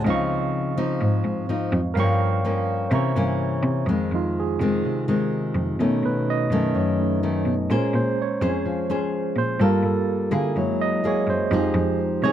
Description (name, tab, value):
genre	bossa nova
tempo	126 BPM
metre	4/4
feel	straight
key	F minor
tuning	A4 = 440 Hz
part	barky tine electric piano	accompaniment	0.0-12.3 s	Ab3 to Db6	-25 LUFS	right 6 dB	medium stereo tremolo
part	nylon-string guitar	accompaniment	0.0-12.3 s	F2 to C5	-23 LUFS	left 3 dB	none
part	clear cello	bass	0.0-12.3 s	Db2 to D3	-26 LUFS	equal	none
room	little or no reverb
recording	dry, close 1970s-style studio recording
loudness	-20 LUFS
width	side -10 dB against mid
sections	0.0-3.9 A section; 3.9-12.3 B section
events	tine electric piano solo 3.9-12.3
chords	0.1 Dbmaj9; 2.0 Gm7b5; 2.9 C7b9; 3.9 Fm7; 5.8 B9; 7.7 Bbm9; 9.6 Gm9; 10.6 Gb9; 11.5 Fm7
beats	| 0.05 0.53 1.01 1.49 | 1.96 2.44 2.92 3.40 | 3.88 4.36 4.83 5.31 | 5.79 6.26 6.74 7.22 | 7.70 8.18 8.65 9.13 | 9.61 10.09 10.56 11.04 | 11.52 12.00